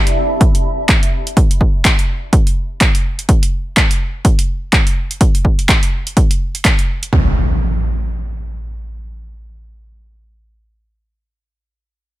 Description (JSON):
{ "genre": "piano house", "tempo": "125 BPM", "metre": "4/4", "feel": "swing 58% on 16ths", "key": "none", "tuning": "none", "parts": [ { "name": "punchy analog drum machine", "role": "drums", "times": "0.1-7.1 s", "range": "handclaps, hi-hat", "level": "-18 LUFS", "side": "equal", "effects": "none" }, { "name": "punchy analog drum machine", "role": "drums", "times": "0.4-7.3 s", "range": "kick drum, toms", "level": "-13 LUFS", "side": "equal", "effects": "none" }, { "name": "impact", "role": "sound effects", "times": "7.1-10.6 s", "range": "none", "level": "-19 LUFS", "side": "equal", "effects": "none" } ], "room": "little or no reverb", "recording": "none", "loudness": "-12 LUFS", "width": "side -16 dB against mid", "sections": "0.0-7.1 A section; 7.1-11.0 B section", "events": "none", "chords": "none", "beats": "0.41 0.89 | 1.37 1.85 2.33 2.81 | 3.29 3.77 4.25 4.73 | 5.21 5.69 6.17 6.65 | 7.13 7.61 8.09 8.57 | 9.05 9.53 10.01 10.49" }